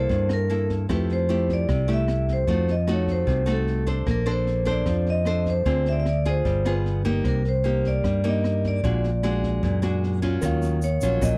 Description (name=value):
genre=bossa nova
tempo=151 BPM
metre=4/4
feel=straight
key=unclear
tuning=A4 = 440 Hz
part: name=vibraphone with medium hard mallets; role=melody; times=0.0-11.4 s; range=A4 to E5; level=-30 LUFS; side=equal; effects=none
part: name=nylon-string guitar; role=accompaniment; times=0.0-11.4 s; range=G2 to C5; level=-30 LUFS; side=equal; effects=none
part: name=fingered electric bass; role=bass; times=0.0-11.4 s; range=G1 to G2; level=-26 LUFS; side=equal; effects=none
part: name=open jazz drum kit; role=drums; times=0.1-11.3 s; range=kick drum, rim click, snare drum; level=-34 LUFS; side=equal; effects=none
part: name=mellow tine electric piano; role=accompaniment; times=10.4-11.4 s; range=Bb4 to F5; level=-35 LUFS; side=equal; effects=none
part: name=tube shaker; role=percussion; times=10.4-11.4 s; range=none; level=-43 LUFS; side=equal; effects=none
room=little or no reverb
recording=dry, close 1970s-style studio recording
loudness=-23 LUFS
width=mono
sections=0.0-10.4 A section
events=none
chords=0.0 C6; 0.9 Fmaj9; 2.5 F7b9; 4.1 Bbmaj9; 5.7 Dm7b5; 6.5 G7b9; 7.2 Cm7; 8.8 Bb7alt; 10.4 Ebm9